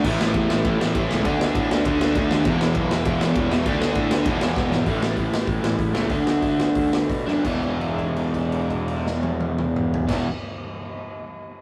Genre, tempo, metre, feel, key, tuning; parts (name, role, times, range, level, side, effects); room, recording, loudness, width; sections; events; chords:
punk rock; 168-200 BPM; 4/4; straight; A4 = 442 Hz
crunchy overdriven guitar; riff; 0.0-10.3 s; E2 to D4; -28 LUFS; equal
overdriven semi-hollow guitar; riff; 0.0-10.3 s; E2 to D4; -27 LUFS; equal
scooped high-gain guitar; riff; 0.0-4.9 s; E2 to D4; -34 LUFS; equal; distortion
fuzz picked electric bass; bass; 0.0-10.2 s; E1 to B2; -30 LUFS; equal; overdrive
raw garage drum kit; drums; 0.0-10.2 s; crash cymbal, hi-hat, kick drum, ride cymbal, snare drum, toms; -28 LUFS; equal
moderate studio reverb, RT60 0.5 s; rough rehearsal-room recording, tube saturation; -22 LUFS; mono
0.0-4.9 A section; 4.9-7.4 B section; 7.4-10.3 C section
drum fill 4.6-4.9, 7.3; slowing down 4.9-7.4; held note 7.4-10.1
0.0 A5; 1.2 D5; 2.5 E5; 3.7 D5; 4.3 E; 4.9 A5; 6.1 D5; 7.4 E5